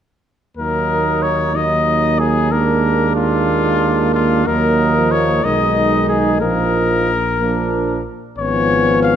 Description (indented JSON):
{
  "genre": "classical, brass quintet",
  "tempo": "62 BPM (dotted quarters)",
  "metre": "6/8",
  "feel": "straight",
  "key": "Eb minor",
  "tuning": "A4 = 440 Hz",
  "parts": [
    { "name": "bright trumpet", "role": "melody", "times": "0.6-9.2 s", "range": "F4 to E#5", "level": "-18 LUFS", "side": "left 5 dB", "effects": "none" },
    { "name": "mellow trumpet", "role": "second line", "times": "0.6-9.2 s", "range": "C#4 to Eb4", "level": "-23 LUFS", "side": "right 7 dB", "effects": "none" },
    { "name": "clear trombone", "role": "accompaniment", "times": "0.6-9.2 s", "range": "Eb3 to Ab3", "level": "-22 LUFS", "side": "right 3 dB", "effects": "none" },
    { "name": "warm French horn", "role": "accompaniment", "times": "0.6-9.2 s", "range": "Ab3 to B3", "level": "-21 LUFS", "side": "equal", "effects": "none" },
    { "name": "mellow bass trombone", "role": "bass", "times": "0.6-9.2 s", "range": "G#1 to Eb2", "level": "-20 LUFS", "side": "right 2 dB", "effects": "none" }
  ],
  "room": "moderate recital hall reverb, RT60 1.5 s",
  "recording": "none",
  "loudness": "-14 LUFS",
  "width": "side -9 dB against mid",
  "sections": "0.6-9.2 A section",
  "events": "none",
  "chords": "0.6 Ebm; 2.5 Bb7/Eb; 4.5 Ebm; 5.4 Abm/Cb; 6.4 Bbsus4; 8.4 C#7/G#",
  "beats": "| 0.58 1.56 | 2.52 3.49 | 4.48 5.45 | 6.41 7.41 | 8.39"
}